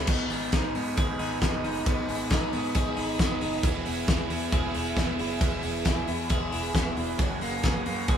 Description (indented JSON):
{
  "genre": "jangly indie pop",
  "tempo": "135 BPM",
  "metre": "4/4",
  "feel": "straight",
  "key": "G# minor",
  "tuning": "A4 = 444 Hz",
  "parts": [
    { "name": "crunchy overdriven guitar", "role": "accompaniment", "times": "0.0-8.2 s", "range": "G#2 to G#4", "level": "-34 LUFS", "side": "right 4 dB", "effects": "phaser" },
    { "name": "electric guitar through a small old amp", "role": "arpeggios", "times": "0.0-8.2 s", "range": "E3 to G#4", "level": "-31 LUFS", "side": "left 1 dB", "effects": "none" },
    { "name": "vintage muted fingered electric bass", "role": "bass", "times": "0.0-8.2 s", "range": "E1 to G#2", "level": "-37 LUFS", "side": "equal", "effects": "none" },
    { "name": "ensemble organ-string", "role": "sustained chords", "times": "0.1-8.2 s", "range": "G#4 to B5", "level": "-37 LUFS", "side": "right 2 dB", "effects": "ensemble chorus" },
    { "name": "loose indie drum kit", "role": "drums", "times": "0.1-8.2 s", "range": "crash cymbal, hi-hat, kick drum, ride cymbal, snare drum", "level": "-27 LUFS", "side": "equal", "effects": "none" }
  ],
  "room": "moderate studio reverb, RT60 0.6 s",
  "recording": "band playing live in one room",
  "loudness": "-25 LUFS",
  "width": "side -8 dB against mid",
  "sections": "0.1-8.2 A section",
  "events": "none",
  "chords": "0.1 G#m; 3.6 E; 7.2 F#add9"
}